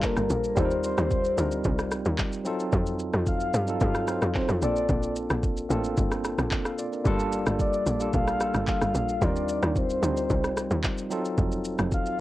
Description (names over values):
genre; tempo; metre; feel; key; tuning
amapiano; 111 BPM; 4/4; straight; unclear; A4 = 441 Hz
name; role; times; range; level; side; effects
soft octave-layered synth lead; melody; 0.0-12.2 s; Bb4 to F5; -29 LUFS; left 2 dB; chorus, phaser, cassette tape, tape echo
tine electric piano; accompaniment; 0.0-12.2 s; Gb3 to A5; -29 LUFS; equal; medium stereo tremolo, plate reverb
smooth R&B drum kit; drums; 0.0-12.2 s; handclaps, kick drum, rim click, shaker; -29 LUFS; equal; cassette tape
tight log drum bass; bass; 0.2-12.2 s; F1 to G2; -28 LUFS; equal; none
room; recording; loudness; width
light reverb; home recording on cassette, lossy compression artefacts; -24 LUFS; side -16 dB against mid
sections
0.0-12.2 A section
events
none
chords
0.0 Gm9; 0.6 Eb69; 2.5 F7b9; 4.6 Bbmaj9; 7.1 Gm9; 9.2 Eb69; 11.1 F7b9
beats
0.03 | 0.57 1.11 1.65 2.19 | 2.73 3.27 3.81 4.35 | 4.89 5.43 5.97 6.51 | 7.05 7.59 8.14 8.68 | 9.22 9.76 10.30 10.84 | 11.38 11.92